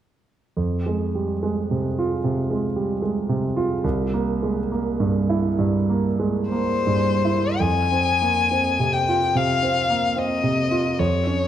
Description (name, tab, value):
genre	classical, romantic duo for violin and grand piano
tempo	50-77 BPM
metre	4/4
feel	rubato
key	F minor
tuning	A4 = 443 Hz
part	clear grand piano	accompaniment	0.6-11.5 s	C2 to F4	-21 LUFS	right 2 dB	none
part	rich violin	melody	6.5-11.5 s	C5 to Ab5	-21 LUFS	left 6 dB	none
room	wet recital hall reverb, RT60 1.4 s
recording	dark, warm production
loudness	-19 LUFS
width	side -10 dB against mid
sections	0.6-7.6 A section; 7.6-11.5 B section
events	none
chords	0.6 Fm; 3.8 C7; 7.6 Fm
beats	| 0.56 1.43 2.23 3.02 | 3.84 4.70 5.58 6.50 | 7.59 8.51 9.35 10.16 | 10.99